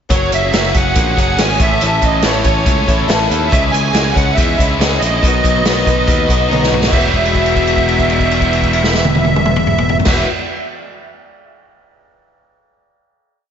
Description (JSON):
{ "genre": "folk rock and heartland rock", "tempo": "141 BPM", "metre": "4/4", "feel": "straight", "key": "E major", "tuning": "A4 = 440 Hz", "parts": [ { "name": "musette accordion", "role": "melody", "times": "0.1-10.2 s", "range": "C#5 to G#5", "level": "-18 LUFS", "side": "right 3 dB", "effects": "slapback echo, analog delay" }, { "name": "picked twelve-string acoustic guitar", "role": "accompaniment", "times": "0.1-10.3 s", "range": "A2 to B4", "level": "-21 LUFS", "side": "left 4 dB", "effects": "slapback echo" }, { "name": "biting overdriven guitar", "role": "riff", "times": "0.1-10.3 s", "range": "E2 to G#4", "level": "-19 LUFS", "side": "left 1 dB", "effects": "slapback echo" }, { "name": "modern bright picked electric bass", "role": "bass", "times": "0.1-10.2 s", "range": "E1 to E2", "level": "-19 LUFS", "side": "equal", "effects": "none" }, { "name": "vintage drum kit", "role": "drums", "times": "0.1-10.2 s", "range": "crash cymbal, hi-hat, kick drum, snare drum, toms", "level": "-16 LUFS", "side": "equal", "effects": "none" } ], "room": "moderate lush hall reverb, RT60 1.8 s", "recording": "big arena sound, nothing above 7.6 kHz", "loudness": "-11 LUFS", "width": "side -8 dB against mid", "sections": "0.1-6.9 verse; 6.9-10.3 final chord", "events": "drum fill 6.5-6.9; held note 6.9-10.1", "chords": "0.1 F#add9; 1.6 A; 3.5 C#m; 5.2 B; 6.9 Eadd9" }